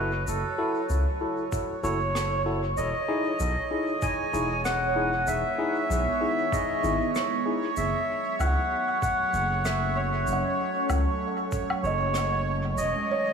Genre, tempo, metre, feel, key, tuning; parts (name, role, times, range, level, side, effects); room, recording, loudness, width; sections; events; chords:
ambient dub; 96 BPM; 4/4; swing 58% on 16ths; F# dorian; A4 = 440 Hz
melodica; melody; 0.0-13.3 s; A4 to G#5; -28 LUFS; equal; dub echo
warbly tape-like pad; sustained chords; 0.2-13.3 s; C#3 to A4; -36 LUFS; right 1 dB; chorus, built-in reverb, phaser
tine electric piano; stabs; 0.0-7.7 s; D#4 to A4; -32 LUFS; left 3 dB; vintage 12-bit sampler grit, dub echo
round analog bass; bass; 0.0-12.9 s; E1 to C#2; -29 LUFS; equal
bubbling stepped-filter texture; texture; 0.0-13.3 s; C#5; -33 LUFS; right 6 dB; chorus, built-in reverb
shaker, rim click and woodblock; drums; 0.3-12.9 s; -37 LUFS; left 1 dB; dub echo
electronic kick drum; drums; 1.5-11.7 s; -31 LUFS; equal
kalimba; arpeggios; 10.3-13.3 s; G#3 to F#5; -33 LUFS; right 2 dB; dub echo
moderate huge ambient reverb, RT60 3.8 s; studio reverb; -24 LUFS; side -6 dB against mid
0.0-13.3 A section
fade-in on ambient pad 0.0-13.3
0.0 F#m7; 2.8 Emaj7; 7.8 F#m; 12.8 Emaj7